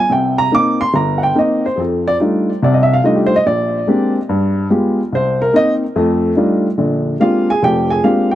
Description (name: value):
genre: solo jazz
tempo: 144 BPM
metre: 4/4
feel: swing 66% on 8ths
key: Bb mixolydian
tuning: A4 = 439 Hz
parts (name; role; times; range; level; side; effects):
- warm upright piano; solo; 0.0-8.3 s; F1 to D6; -12 LUFS; equal; none
room: little or no reverb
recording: dry, close 1970s-style studio recording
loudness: -12 LUFS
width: side -13 dB against mid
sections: 0.0-6.8 A section; 6.8-8.3 B section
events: upright piano solo 0.0-6.8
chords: 0.1 Cm7; 1.8 F13; 3.5 Bb13; 4.3 G7b9; 5.1 Cm7; 6.0 F13; 6.8 Bb13